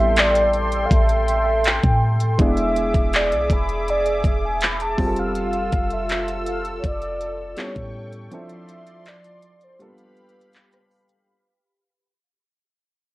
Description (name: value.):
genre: contemporary R&B.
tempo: 81 BPM.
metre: 4/4.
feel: straight.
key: A minor.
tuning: A4 = 444 Hz.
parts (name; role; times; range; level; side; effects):
mellow horn-like synth lead; melody; 0.0-10.9 s; B4 to B5; -23 LUFS; equal; chorus, tape echo.
warm baby grand piano; accompaniment; 0.0-11.3 s; F3 to A4; -29 LUFS; equal; none.
warm analog pad; sustained chords; 0.0-11.3 s; F3 to E6; -27 LUFS; equal; chorus.
clean 808-style bass; bass; 0.0-8.3 s; E1 to A2; -25 LUFS; equal; none.
trap drum kit; drums; 0.2-11.3 s; handclaps, hi-hat, kick drum, rim click; -20 LUFS; equal; overdrive.
room: light reverb.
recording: cassette tape.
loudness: -18 LUFS.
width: side -18 dB against mid.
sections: 0.0-11.3 A section.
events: fade-out 0.0-11.3; break 8.3-11.3.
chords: 0.0 Am7; 2.4 E7; 5.0 Fmaj7; 7.6 A7; 8.3 Dm7; 9.8 G7.